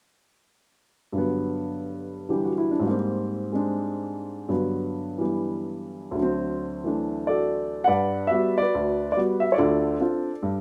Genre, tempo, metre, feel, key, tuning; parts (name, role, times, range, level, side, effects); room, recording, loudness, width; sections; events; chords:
solo jazz; 143 BPM; 4/4; swing 67% on 8ths, rubato; G major; A4 = 439 Hz
warm upright piano; solo; 1.1-10.6 s; D2 to F#5; -26 LUFS; equal
moderate studio reverb, RT60 0.8 s; -26 LUFS; mono
1.2-7.9 A section; 7.9-10.6 B section
1.2 Gmaj7; 2.9 Abmaj9; 4.5 Gmaj7; 6.2 D7; 7.9 Gmaj7; 9.6 Dm7